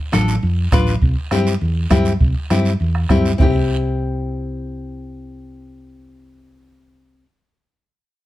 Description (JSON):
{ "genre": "latin, cumbia", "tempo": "202 BPM", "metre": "4/4", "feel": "straight", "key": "C major", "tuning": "A4 = 440 Hz", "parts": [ { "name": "nylon-string guitar", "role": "accompaniment", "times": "0.1-7.3 s", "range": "C4 to B4", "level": "-22 LUFS", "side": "left 4 dB", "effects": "none" }, { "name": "hollow-body short-scale fingered electric bass", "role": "bass", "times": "0.1-7.2 s", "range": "A1 to G2", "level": "-19 LUFS", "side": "equal", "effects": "none" }, { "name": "bombo", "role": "percussion", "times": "0.1-3.5 s", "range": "none", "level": "-18 LUFS", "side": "right 1 dB", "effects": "none" }, { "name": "congas", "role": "percussion", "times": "0.1-3.5 s", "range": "none", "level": "-23 LUFS", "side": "right 1 dB", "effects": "none" }, { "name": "guiro", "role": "percussion", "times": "0.1-3.5 s", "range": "none", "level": "-33 LUFS", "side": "right 5 dB", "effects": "none" } ], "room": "little or no reverb", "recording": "dark, warm production", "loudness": "-15 LUFS", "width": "side -16 dB against mid", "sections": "0.0-3.4 A section; 3.4-5.8 B section", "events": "none", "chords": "0.0 Dm; 1.0 C" }